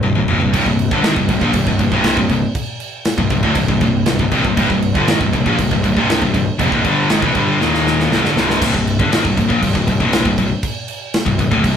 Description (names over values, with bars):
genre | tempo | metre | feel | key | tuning
heavy metal | 119 BPM | 4/4 | straight | C minor | A4 = 440 Hz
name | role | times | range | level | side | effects
scooped high-gain guitar | riff | 0.0-11.7 s | C2 to G3 | -16 LUFS | left 3 dB | distortion
fuzz picked electric bass | bass | 0.0-11.8 s | C1 to Bb1 | -20 LUFS | right 2 dB | overdrive
modern studio drum kit | drums | 0.0-11.8 s | crash cymbal, kick drum, snare drum, toms | -20 LUFS | right 1 dB | none
heavy high-gain guitar | riff | 0.5-8.6 s | C2 to G3 | -22 LUFS | right 7 dB | distortion
room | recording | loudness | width
moderate studio reverb, RT60 0.6 s | rough rehearsal-room recording | -13 LUFS | side -8 dB against mid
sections
0.0-8.6 A section; 8.6-11.8 A section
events
drum fill 0.0-0.5, 7.6-8.6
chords
0.0 C5; 7.6 Eb5; 8.1 C5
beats
0.03 | 0.54 1.04 1.55 2.05 | 2.56 3.06 3.57 4.07 | 4.58 5.08 5.59 6.09 | 6.60 7.10 7.61 8.11 | 8.62 9.12 9.62 10.13 | 10.63 11.14 11.64